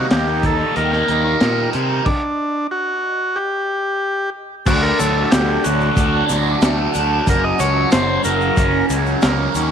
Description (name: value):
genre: psychedelic rock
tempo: 92 BPM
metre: 4/4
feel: straight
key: unclear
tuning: A4 = 441 Hz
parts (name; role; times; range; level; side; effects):
- overdriven combo organ; melody; 0.0-8.9 s; D4 to Eb5; -20 LUFS; equal; tape echo
- ethereal airy pad; sustained chords; 0.0-9.7 s; C#4 to D#6; -28 LUFS; right 10 dB; ensemble chorus, built-in reverb
- overdriven electric guitar; riff; 0.0-9.7 s; F#2 to Eb4; -20 LUFS; equal; phaser
- fuzz picked electric bass; bass; 0.0-9.7 s; F#1 to C3; -21 LUFS; equal; overdrive
- crunchy breakbeat drum kit; drums; 0.1-9.7 s; crash cymbal, hi-hat, kick drum, snare drum; -19 LUFS; equal; none
- tube shaker; percussion; 4.7-9.7 s; none; -33 LUFS; left 19 dB; none
room: little or no reverb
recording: 1960s-style stereo with parts hard left and right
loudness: -15 LUFS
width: side -8 dB against mid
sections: 0.0-4.7 A section; 4.7-9.7 B section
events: stop 2.1-4.7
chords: 0.0 Eb; 2.1 N.C.; 4.7 D; 7.3 F#